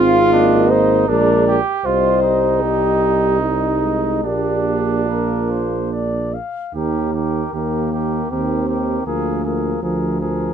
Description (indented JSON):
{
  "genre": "classical, brass quintet",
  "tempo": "71-81 BPM",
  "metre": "3/4",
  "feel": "rubato",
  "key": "Eb major",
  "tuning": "A4 = 440 Hz",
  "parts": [
    { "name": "dark cornet", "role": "melody", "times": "0.0-10.5 s", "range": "Bb4 to F5", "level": "-24 LUFS", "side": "left 6 dB", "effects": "none" },
    { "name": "mellow trumpet", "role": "second line", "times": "0.0-10.5 s", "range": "D4 to Ab4", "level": "-24 LUFS", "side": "right 9 dB", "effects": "none" },
    { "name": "mellow French horn", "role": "accompaniment", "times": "0.0-10.5 s", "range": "F3 to C5", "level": "-19 LUFS", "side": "left 3 dB", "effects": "none" },
    { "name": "mellow euphonium", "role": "accompaniment", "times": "0.0-10.5 s", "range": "Eb3 to C4", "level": "-24 LUFS", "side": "right 5 dB", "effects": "none" },
    { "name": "warm bass trombone", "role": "bass", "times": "0.0-10.5 s", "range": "Ab1 to Eb2", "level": "-20 LUFS", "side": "right 4 dB", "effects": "none" }
  ],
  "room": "light reverb",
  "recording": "minimal, uncompressed stereo recording",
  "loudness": "-15 LUFS",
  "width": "side -8 dB against mid",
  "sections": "0.0-6.7 A section; 6.7-10.5 B section",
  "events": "none",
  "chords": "0.0 Fm/Ab; 1.1 Bb7; 1.9 Cm; 4.2 Bb; 6.7 Eb; 9.1 Bb7/D",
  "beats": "0.33 1.09 | 1.85 2.62 3.42 | 4.24 5.08 5.91 | 6.74 7.54 8.31 | 9.07 9.83"
}